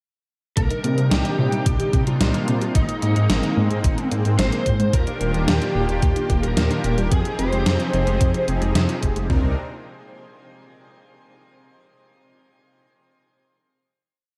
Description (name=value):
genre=synthwave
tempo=110 BPM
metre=4/4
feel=straight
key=C minor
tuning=A4 = 444 Hz
part: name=lead guitar through a small cranked amp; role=melody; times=0.6-8.4 s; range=Eb4 to C5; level=-29 LUFS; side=equal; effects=overdrive, ensemble chorus, tape echo, shimmer reverb
part: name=soft supersaw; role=sustained chords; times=0.6-9.6 s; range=C3 to Bb4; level=-30 LUFS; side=equal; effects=analog chorus, sidechain pumping, shimmer reverb
part: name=unison pluck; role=arpeggios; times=0.6-9.6 s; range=Bb2 to Ab3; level=-30 LUFS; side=equal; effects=delay, shimmer reverb
part: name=dark detuned saw bass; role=bass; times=0.6-9.6 s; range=Eb1 to C3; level=-24 LUFS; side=equal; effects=none
part: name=gated 80s digital drum machine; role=drums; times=0.6-9.4 s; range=kick drum, toms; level=-23 LUFS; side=equal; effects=gated reverb, overdrive
part: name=gated 80s digital drum machine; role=drums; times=0.6-9.3 s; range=hi-hat, snare drum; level=-28 LUFS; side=equal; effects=gated reverb, gated reverb snare, overdrive
room=moderate plate reverb, RT60 1.5 s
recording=dreamy mix soaked in reverb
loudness=-20 LUFS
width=mono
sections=0.6-9.3 verse; 9.3-11.5 final chord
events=filter sweep on synth arpeggio sound 0.6-9.3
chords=0.6 Cm7; 2.8 Abadd9; 4.9 Ebmaj7; 7.1 Fm7; 9.3 C7(no3)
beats=| 0.57 1.11 1.66 2.21 | 2.75 3.30 3.84 4.39 | 4.93 5.48 6.02 6.57 | 7.12 7.66 8.21 8.75 | 9.30